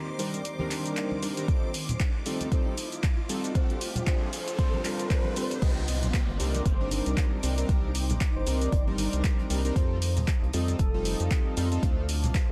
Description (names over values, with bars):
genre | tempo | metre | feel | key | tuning
deep house | 116 BPM | 4/4 | swing 57% on 16ths | C dorian | A4 = 440 Hz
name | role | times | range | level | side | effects
airy breathy pad | sustained chords | 0.0-12.5 s | A3 to Eb6 | -45 LUFS | equal | none
riser, noise sweep and downlifter | sound effects | 1.6-9.8 s | none | -43 LUFS | equal | none
granular cloud pad | texture | 0.0-12.5 s | Eb3 to D6 | -43 LUFS | equal | built-in reverb, sidechain pumping
string machine, violins | texture | 0.0-5.6 s | D6 | -50 LUFS | equal | ensemble chorus, sidechain pumping
warm velvety synth lead | melody | 0.1-12.5 s | A4 to Eb5 | -42 LUFS | equal | chorus, tape echo
chorused polysynth | stabs | 0.2-12.0 s | G3 to Bb4 | -36 LUFS | equal | sidechain pumping, tape echo
punchy analog drum machine | drums | 0.2-12.5 s | crash cymbal, handclaps, hi-hat, shaker | -38 LUFS | equal | high-pass filter on hats, high-pass filter on perc, high-pass filter on snare, high-pass filter on cymbals, high-pass filter on room
congas | percussion | 0.6-12.3 s | none | -37 LUFS | equal | none
electronic kick drum | drums | 1.5-12.5 s | none | -28 LUFS | equal | none
rubbery square bass | bass | 5.6-12.5 s | F1 to F2 | -31 LUFS | equal | sidechain pumping
jazz brush drum kit | drums | 5.6-12.5 s | hi-hat, snare drum | -50 LUFS | equal | none
room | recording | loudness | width
digital ambience | dense, heavily limited modern master | -28 LUFS | mono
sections
0.0-5.6 A section; 5.6-12.5 B section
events
build-up 0.0-5.6; filter sweep on soft synth lead 0.0-5.6; riser 1.6-5.6; noise sweep 3.6-5.6; drop 5.6-12.5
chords
0.0 Cm9; 1.5 F7; 3.6 Dm7; 5.6 Cm9; 9.8 F7; 11.8 Dm7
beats
0.45 0.97 | 1.48 2.00 2.52 3.04 | 3.55 4.07 4.59 5.10 | 5.62 6.14 6.66 7.17 | 7.69 8.21 8.72 9.24 | 9.76 10.28 10.79 11.31 | 11.83 12.35